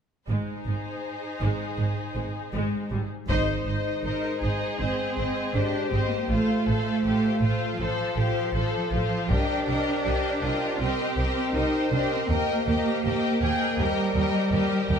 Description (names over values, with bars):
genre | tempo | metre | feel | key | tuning
cinematic, epic orchestral film score | 80 BPM | 4/4 | straight | unclear | A4 = 437 Hz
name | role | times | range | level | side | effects
warm symphonic violin section | second line | 0.3-15.0 s | Ab4 to G5 | -33 LUFS | left 3 dB | none
clear symphonic viola section | accompaniment | 0.3-15.0 s | G3 to G5 | -32 LUFS | equal | none
clear symphonic double bass section | bass | 0.3-15.0 s | Ab1 to Eb2 | -29 LUFS | right 2 dB | none
rich symphonic cello section | bass | 0.3-15.0 s | Ab2 to Eb4 | -28 LUFS | right 1 dB | none
rich symphonic violin section | melody | 3.3-15.0 s | F4 to C5 | -33 LUFS | left 2 dB | none
mellow French horn section | sustained chords | 3.3-15.0 s | Ab3 to C5 | -34 LUFS | left 5 dB | none
solo taiko drums | drums | 3.3-4.8, 9.3-10.8 s | none | -28 LUFS | left 1 dB | none
room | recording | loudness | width
moderate scoring stage reverb, RT60 1.9 s | none | -23 LUFS | side -7 dB against mid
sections
0.3-3.3 A section; 3.3-15.0 B section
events
band accent 3.3-4.0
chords
0.3 Ab; 6.3 F/A; 9.3 Cm7; 12.3 Eb